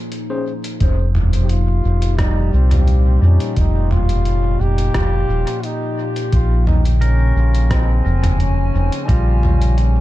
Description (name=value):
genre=ambient dub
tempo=87 BPM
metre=4/4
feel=straight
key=F minor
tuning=A4 = 440 Hz
part: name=warbly tape-like pad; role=sustained chords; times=0.0-10.0 s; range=Bb2 to Ab5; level=-25 LUFS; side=left 2 dB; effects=chorus, built-in reverb
part: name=lo-fi sampler-style drum kit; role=drums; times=0.1-9.9 s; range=hi-hat, rim click, toms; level=-24 LUFS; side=right 1 dB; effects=dub echo
part: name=overdriven tine electric piano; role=stabs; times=0.3-0.5 s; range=Db4 to C5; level=-29 LUFS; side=left 2 dB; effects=medium tremolo, low-pass filter, dub echo
part: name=round analog bass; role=bass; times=0.8-10.0 s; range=Eb1 to F2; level=-14 LUFS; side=equal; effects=tube saturation
part: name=electronic kick drum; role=drums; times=0.8-9.2 s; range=none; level=-18 LUFS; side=equal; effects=none
part: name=clear trombone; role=melody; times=1.4-10.0 s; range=C4 to G4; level=-25 LUFS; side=left 1 dB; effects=tape echo
part: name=pedal steel guitar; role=arpeggios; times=2.2-10.0 s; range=G3 to Bb4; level=-30 LUFS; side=right 2 dB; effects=tape echo
room=little or no reverb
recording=dark, warm production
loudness=-14 LUFS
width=side -16 dB against mid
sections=0.0-10.0 A section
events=fade-in on ambient pad 0.0-10.0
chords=0.0 Bbm7; 0.8 F9sus4; 6.3 Bbm7